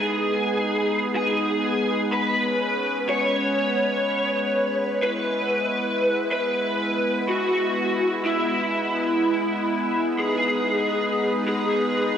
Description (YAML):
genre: synthwave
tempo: 93 BPM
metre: 4/4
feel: straight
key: G# minor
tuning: A4 = 440 Hz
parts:
  - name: lead guitar through a small cranked amp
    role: melody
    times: 0.0-12.2 s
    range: E4 to C#5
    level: -23 LUFS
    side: equal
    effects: overdrive, ensemble chorus, shimmer reverb, digital delay
  - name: chorused pulse-width pad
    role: sustained chords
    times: 0.0-12.2 s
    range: G#3 to B4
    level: -25 LUFS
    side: equal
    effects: shimmer reverb
room: wet lush hall reverb, RT60 2.0 s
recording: bright 1980s-style digital production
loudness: -21 LUFS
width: side -8 dB against mid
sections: 0.0-12.2 A section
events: none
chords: 0.0 G#m; 5.0 E; 10.2 G#m